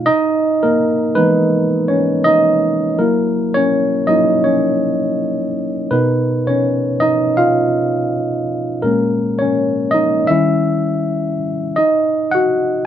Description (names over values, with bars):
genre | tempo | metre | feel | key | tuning
R&B | 82 BPM | 4/4 | swing 55% on 16ths | unclear | A4 = 441 Hz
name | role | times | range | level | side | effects
tine electric piano | solo | 0.0-12.9 s | Bb2 to Gb5 | -14 LUFS | equal | none
room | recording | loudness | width
moderate studio ambience, RT60 0.5 s | band playing live in one room | -14 LUFS | side -10 dB against mid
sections
0.0-12.9 A section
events
tine electric piano solo 0.0-12.9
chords
0.0 Emaj7#11; 3.0 Gb6; 5.9 Bmaj9; 8.8 Bbm7; 10.3 Eb7b9; 11.8 Ab7(no3) (rootless)